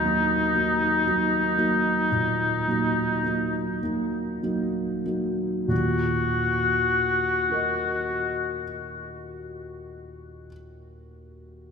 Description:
classical, romantic duo for oboe and grand piano; 31-40 BPM (dotted quarters); 12/8; rubato; Eb minor; A4 = 440 Hz
warm oboe; melody; 0.0-8.6 s; Eb4 to Gb4; -25 LUFS; left 2 dB
dark concert grand piano; accompaniment; 0.0-11.7 s; Eb2 to Eb5; -27 LUFS; right 1 dB
wet cathedral reverb, RT60 4.9 s; in a vast, echoing space; -22 LUFS; side -6 dB against mid
0.0-5.7 A section; 5.7-11.7 B section
slowing down 0.0-5.7
0.0 Ebm

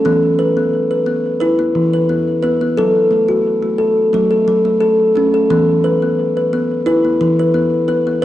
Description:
world meditative, meditative tuned percussion; 88 BPM; 4/4; straight; A4 = 440 Hz
kalimba; solo; 0.0-8.2 s; E3 to B4; -12 LUFS; equal; ping-pong delay
wet recital hall reverb, RT60 1.9 s, small room ambience; worn, warbling old tape, cassette tape, warbly pitch drift; -12 LUFS; side -13 dB against mid
0.0-8.2 A section
0.1 E5; 2.8 F#m; 5.5 E5

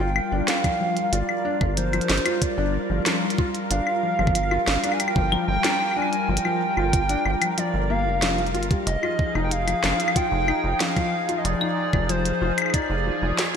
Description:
IDM; 93 BPM; 4/4; straight; G phrygian; A4 = 440 Hz
warbly nostalgic lead; melody; 0.0-13.6 s; C5 to Ab5; -26 LUFS; right 1 dB; chorus, digital delay
warm analog pad; sustained chords; 0.0-13.6 s; F3 to Bb4; -29 LUFS; left 2 dB; chorus, phaser, sidechain pumping
felt-muted upright piano; arpeggios; 0.0-13.4 s; F3 to F4; -29 LUFS; left 4 dB; ping-pong delay
deep acid bass; bass; 0.0-13.3 s; F1 to G1; -26 LUFS; right 1 dB; tube saturation
flickering grainy texture; texture; 0.0-13.6 s; F4 to F5; -38 LUFS; right 2 dB
glitchy drum kit; drums; 0.2-13.5 s; claves, hi-hat, snare drum; -27 LUFS; left 1 dB; gated reverb
electronic kick drum; drums; 0.6-12.9 s; -23 LUFS; right 1 dB
wet lush hall reverb, RT60 3.1 s; bright 1980s-style digital production; -20 LUFS; side -7 dB against mid
0.0-13.6 A section
0.0 Gm7; 8.9 Fm7

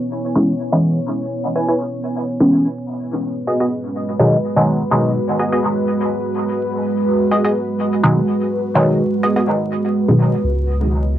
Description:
dub techno; 125 BPM; 4/4; swing 54% on 16ths; A4 = 440 Hz
deep dark ambient pad; sustained chords; 0.0-11.2 s; G#3 to C#5; -20 LUFS; right 1 dB; chorus, built-in reverb
filtered dub chord stab; stabs; 0.4-10.4 s; B2 to C#4; -16 LUFS; equal; chorus, phaser, dub echo
filtered dub chord stab; riff; 1.6-9.4 s; B3 to G#5; -22 LUFS; right 1 dB; chorus, cassette tape, dub echo
round analog bass; bass; 10.4-11.2 s; C#2; -17 LUFS; equal
moderate booth ambience, RT60 0.2 s; home recording on cassette, vinyl crackle, low-pass filter; -15 LUFS; side -12 dB against mid
0.0-10.4 A section
filter sweep on ambient pad 0.0-10.4; filter sweep 0.0-10.4
0.0 C#m7; 2.8 G#m7; 10.4 C#m7

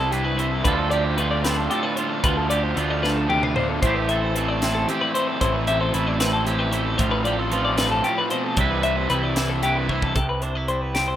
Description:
math rock and midwest emo; 76 BPM (dotted quarters); 6/8; straight; C major; A4 = 439 Hz
twangy electric guitar; accompaniment; 0.0-11.2 s; G2 to B4; -28 LUFS; right 6 dB
twelve-string electric guitar; arpeggios; 0.0-11.2 s; G4 to E5; -24 LUFS; left 2 dB; lush chorus, tape echo
raw garage guitar; riff; 0.0-10.2 s; A2 to F4; -25 LUFS; equal; overdrive
fuzz picked electric bass; bass; 0.0-11.2 s; A1 to D2; -26 LUFS; equal; overdrive
crisp fusion drum kit; drums; 0.1-11.1 s; hi-hat, kick drum, snare drum, toms; -27 LUFS; equal
small room reverb; rough home demo mix; -19 LUFS; side -11 dB against mid
0.0-10.2 A section; 10.2-11.2 B section
drum fill 3.0-3.8, 9.9
0.0 Cmaj7; 0.7 Dm7; 3.8 Am7; 7.0 F6/A; 8.6 Cmaj7

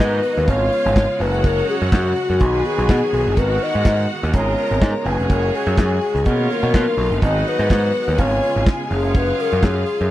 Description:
disco; 125 BPM; 4/4; swing 56% on 16ths; A4 = 438 Hz
mellow hollow alto flute; melody; 0.0-10.1 s; F#4 to D#5; -21 LUFS; left 3 dB
clear studio string section; second line; 0.0-10.1 s; D#4 to A#5; -28 LUFS; equal; slapback echo
clear studio string section; sustained chords; 0.0-10.1 s; C#3 to G#4; -27 LUFS; right 3 dB
clear horn section; stabs; 0.0-9.8 s; G#3 to E#5; -28 LUFS; right 2 dB
overdriven picked electric bass; bass; 0.0-10.1 s; E#1 to B2; -20 LUFS; equal
modern studio drum kit; drums; 0.0-10.1 s; handclaps, hi-hat, kick drum, snare drum; -17 LUFS; equal
little or no reverb; dry, close 1970s-style studio recording; -16 LUFS; side -14 dB against mid
0.0-10.1 A section
0.5 C#7/G#; 1.2 F#sus2; 2.4 B; 3.4 G#m7; 4.3 C#7/G#; 5.1 F#sus2; 6.3 Bmaj7; 7.2 G#m7; 8.2 C#7/G#; 8.9 F#sus2

